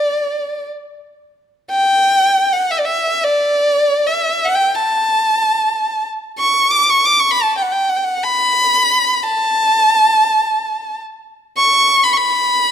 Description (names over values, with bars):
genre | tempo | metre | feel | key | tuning
arabic | 90 BPM | 4/4 | straight | D maqam ajam | A4 = 440 Hz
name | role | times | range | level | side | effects
warm violin | solo | 0.0-12.7 s | D5 to D6 | -13 LUFS | equal | none
room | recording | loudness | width
moderate scoring stage reverb, RT60 1.5 s | close, detailed microphones | -12 LUFS | side -8 dB against mid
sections
0.0-12.7 A section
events
none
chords
none